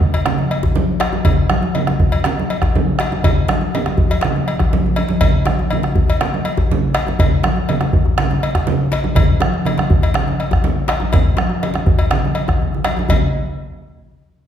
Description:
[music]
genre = west african traditional, West African drum ensemble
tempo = 122 BPM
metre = 4/4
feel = straight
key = none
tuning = none
[part]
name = bombo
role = percussion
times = 0.0-13.3 s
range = none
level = -18 LUFS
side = right 1 dB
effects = none
[part]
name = congas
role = percussion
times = 0.1-13.3 s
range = none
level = -19 LUFS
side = right 2 dB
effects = none
[part]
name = cowbell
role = percussion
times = 0.1-13.3 s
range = none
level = -25 LUFS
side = left 2 dB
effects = none
[part]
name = djembe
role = percussion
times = 0.1-13.3 s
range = none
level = -20 LUFS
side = left 2 dB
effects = none
[sound]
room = wet recital hall reverb, RT60 1.4 s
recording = heard from further back in the room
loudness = -14 LUFS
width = side -9 dB against mid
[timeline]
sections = 0.0-13.1 A section; 13.1-14.5 B section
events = drum fill 4.8-5.2, 12.6-13.1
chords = none

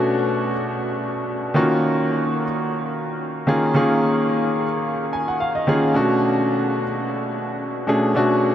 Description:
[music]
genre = amapiano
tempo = 109 BPM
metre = 4/4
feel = swing 55% on 16ths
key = Eb minor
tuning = A4 = 439 Hz
[part]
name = clear grand piano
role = solo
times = 0.0-8.5 s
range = B2 to Ab5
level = -18 LUFS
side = equal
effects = diffuse ambient delay
[sound]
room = wet huge ambient reverb, RT60 8.5 s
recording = dreamy mix soaked in reverb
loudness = -18 LUFS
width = side -10 dB against mid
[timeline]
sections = 0.0-1.5 A section; 1.5-8.5 B section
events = drop 0.0-1.5; grand piano fill 4.8-5.9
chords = 0.0 Bm9; 1.5 Ebm9; 5.9 Bm9

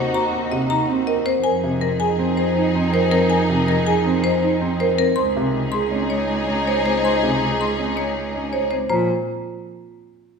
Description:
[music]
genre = classical, minimalist pattern music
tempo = 161 BPM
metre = 5/4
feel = straight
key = Bb minor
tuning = A4 = 441 Hz
[part]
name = marimba with hard mallets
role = melody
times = 0.0-9.1 s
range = Bb4 to C6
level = -23 LUFS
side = left 8 dB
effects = none
[part]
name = rich symphonic string section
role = sustained chords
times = 0.0-8.7 s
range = Eb4 to Ab4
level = -25 LUFS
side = left 2 dB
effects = none
[part]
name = rich cello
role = bass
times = 0.0-9.1 s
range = Db2 to Bb2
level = -24 LUFS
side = right 3 dB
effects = none
[part]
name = marimba with soft mallets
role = arpeggios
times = 0.1-9.1 s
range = C4 to C5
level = -24 LUFS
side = right 7 dB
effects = none
[part]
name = warm grand piano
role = accompaniment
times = 0.3-9.1 s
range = C3 to Db4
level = -27 LUFS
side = equal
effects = none
[part]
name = small celesta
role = arpeggios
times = 8.9-9.1 s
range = Bb5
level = -29 LUFS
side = left 2 dB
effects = none
[sound]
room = wet recital hall reverb, RT60 1.6 s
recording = recorded in a church or concert hall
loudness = -17 LUFS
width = side -5 dB against mid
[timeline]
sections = 0.0-8.9 A section; 8.9-10.4 B section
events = none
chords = 0.0 Ebm; 1.4 Fm7; 5.2 Dbsus2; 8.9 Bb5

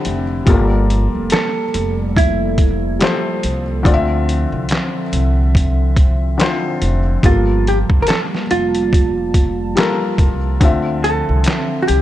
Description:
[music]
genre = lo-fi hip hop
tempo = 71 BPM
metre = 4/4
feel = swing 58% on 16ths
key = unclear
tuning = A4 = 444 Hz
[part]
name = felt-muted upright piano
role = accompaniment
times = 0.0-12.0 s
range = D3 to E5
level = -21 LUFS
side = left 4 dB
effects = none
[part]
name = dark analog pad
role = sustained chords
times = 0.0-12.0 s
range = D3 to A5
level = -24 LUFS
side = equal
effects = chorus
[part]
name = trip hop sampler-style drum kit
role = drums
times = 0.0-12.0 s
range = handclaps, hi-hat, kick drum, snare drum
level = -16 LUFS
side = equal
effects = none
[part]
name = upright bass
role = bass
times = 0.1-12.0 s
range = F1 to D2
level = -18 LUFS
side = equal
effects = none
[part]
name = vintage hollow-body jazz guitar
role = melody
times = 1.3-12.0 s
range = E4 to Bb4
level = -19 LUFS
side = right 2 dB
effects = none
[sound]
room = digital ambience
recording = cassette tape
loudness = -13 LUFS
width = side -13 dB against mid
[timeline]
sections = 0.0-12.0 A section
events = none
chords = 0.5 Gm9; 3.8 Dm9; 7.2 Gm9; 10.6 Dm9

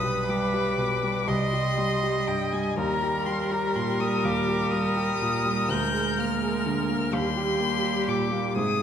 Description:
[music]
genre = classical, slow romantic movement for piano quartet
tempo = 41 BPM (dotted quarters)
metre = 6/8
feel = rubato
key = unclear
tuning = A4 = 440 Hz
[part]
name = rich violin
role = melody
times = 0.0-8.8 s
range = G5 to G6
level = -29 LUFS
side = left 5 dB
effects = none
[part]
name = clear cello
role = second line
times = 0.0-8.8 s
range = C3 to Ab3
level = -32 LUFS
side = right 8 dB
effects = none
[part]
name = clear viola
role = accompaniment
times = 0.0-8.8 s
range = G4 to Eb5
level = -30 LUFS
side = right 2 dB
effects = none
[part]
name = warm grand piano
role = accompaniment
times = 0.0-8.8 s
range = B1 to Ab4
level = -27 LUFS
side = left 1 dB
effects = none
[sound]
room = moderate concert hall reverb, RT60 2.3 s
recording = none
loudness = -23 LUFS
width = side -8 dB against mid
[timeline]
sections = 0.0-8.8 A section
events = none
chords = 0.0 G/B; 1.3 Cm; 2.8 Eb; 5.7 Bb7/D; 7.1 Eb

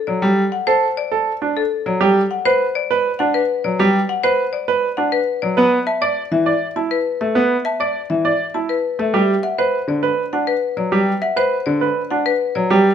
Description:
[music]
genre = classical, minimalist pattern music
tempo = 101 BPM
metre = 3/4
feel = straight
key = C lydian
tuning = A4 = 440 Hz
[part]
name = marimba with hard mallets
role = melody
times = 0.1-12.7 s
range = A4 to A5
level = -21 LUFS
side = left 7 dB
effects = none
[part]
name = bright grand piano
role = accompaniment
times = 0.1-12.9 s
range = D3 to B3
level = -17 LUFS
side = equal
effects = none
[part]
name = bright baby grand piano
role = arpeggios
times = 0.7-12.9 s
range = D4 to D5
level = -20 LUFS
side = right 6 dB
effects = none
[part]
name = xylophone with rubber mallets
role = arpeggios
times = 5.9-11.4 s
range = E5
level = -25 LUFS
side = left 1 dB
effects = none
[sound]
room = moderate large studio reverb, RT60 1.0 s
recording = none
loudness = -16 LUFS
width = side -8 dB against mid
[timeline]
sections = 0.0-12.9 A section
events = none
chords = 0.0 Dsus4; 2.0 Csus2 (rootless); 5.6 Bm7; 9.1 Cmaj9 (rootless)

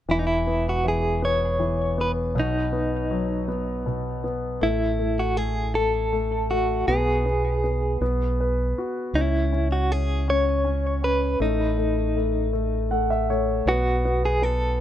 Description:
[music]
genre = pop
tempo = 53 BPM (dotted quarters)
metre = 6/8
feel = straight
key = E major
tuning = A4 = 440 Hz
[part]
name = direct-recorded clean electric guitar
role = melody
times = 0.1-14.8 s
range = D#4 to C#5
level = -25 LUFS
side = right 1 dB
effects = tremolo, tape echo
[part]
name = clear concert grand piano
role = accompaniment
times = 0.1-14.8 s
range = B2 to F#5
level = -26 LUFS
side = left 2 dB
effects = none
[part]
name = fingered electric bass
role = bass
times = 0.1-14.8 s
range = E1 to C#2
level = -26 LUFS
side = right 1 dB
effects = none
[sound]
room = little or no reverb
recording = rough home demo mix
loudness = -21 LUFS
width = side -11 dB against mid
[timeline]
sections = 0.1-14.8 A section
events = grand piano fill 12.5-13.7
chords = 0.1 E5; 2.4 B; 4.6 F#m7/A; 6.9 G#m/B; 8.0 B5; 9.1 C#m; 11.4 A6; 13.7 B5

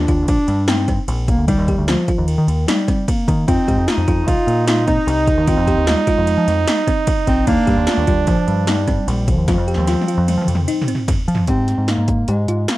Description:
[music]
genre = progressive instrumental, band music in an uneven meter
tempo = 150 BPM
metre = 5/4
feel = straight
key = F dorian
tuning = A4 = 440 Hz
[part]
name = breathy bass clarinet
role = melody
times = 0.0-12.8 s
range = Eb3 to F4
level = -20 LUFS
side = equal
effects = none
[part]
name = thumb-piano-like synth pluck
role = arpeggios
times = 0.0-12.8 s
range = C4 to G4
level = -25 LUFS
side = left 3 dB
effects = chorus
[part]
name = deep dub picked electric bass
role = bass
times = 0.0-12.7 s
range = Bb1 to F3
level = -19 LUFS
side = equal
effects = none
[part]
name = 80s electronic pad drums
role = drums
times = 0.1-12.8 s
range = hi-hat, kick drum, ride cymbal, snare drum, toms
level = -20 LUFS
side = equal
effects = gated reverb on snare and toms
[part]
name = mellow flugelhorn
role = second line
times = 3.5-11.2 s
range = C4 to Eb4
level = -21 LUFS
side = right 6 dB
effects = none
[sound]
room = light reverb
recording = dry, close 1970s-style studio recording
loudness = -14 LUFS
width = side -17 dB against mid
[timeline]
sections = 0.0-11.5 A section; 11.5-12.8 B section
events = drum fill 9.5-11.5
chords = 0.0 Eb; 3.5 F7(no3); 7.5 Ebmaj7; 9.5 F5; 11.5 Abmaj7

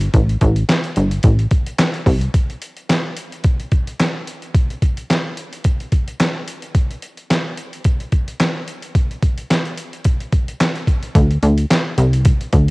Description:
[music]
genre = early-eighties boogie funk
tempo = 109 BPM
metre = 4/4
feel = swing 56% on 16ths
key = unclear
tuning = A4 = 440 Hz
[part]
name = plucky analog bass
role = bass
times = 0.0-2.3, 11.2-12.7 s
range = G1 to D2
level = -14 LUFS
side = equal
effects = tube saturation
[part]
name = trip hop sampler-style drum kit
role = drums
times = 0.0-12.7 s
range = handclaps, hi-hat, kick drum, snare drum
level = -16 LUFS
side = equal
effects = cassette tape
[sound]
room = little or no reverb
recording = home recording on cassette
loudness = -15 LUFS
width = side -26 dB against mid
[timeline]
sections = 0.0-2.3 A section; 2.3-11.2 B section; 11.2-12.7 C section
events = none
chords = none

